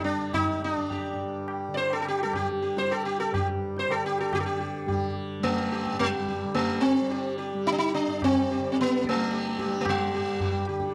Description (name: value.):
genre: indian classical, Hindustani.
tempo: 107 BPM.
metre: 5/4.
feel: straight.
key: unclear.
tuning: A4 = 440 Hz.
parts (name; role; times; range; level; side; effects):
sitar; melody; 0.0-10.9 s; G3 to D5; -28 LUFS; equal; none.
tanpura; drone; 0.0-10.9 s; G2 to G3; -38 LUFS; equal; none.
tabla; percussion; 0.3-10.9 s; none; -36 LUFS; equal; none.
room: light reverb.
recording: dry, close 1970s-style studio recording.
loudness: -27 LUFS.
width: mono.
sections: 0.0-4.3 A section; 4.3-10.9 B section.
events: speeding up 0.0-10.9.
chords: none.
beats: 0.34 0.91 | 1.49 2.06 2.62 3.19 3.76 | 4.32 4.88 5.44 6.00 6.56 | 7.11 7.67 8.22 8.77 9.31 | 9.86 10.40.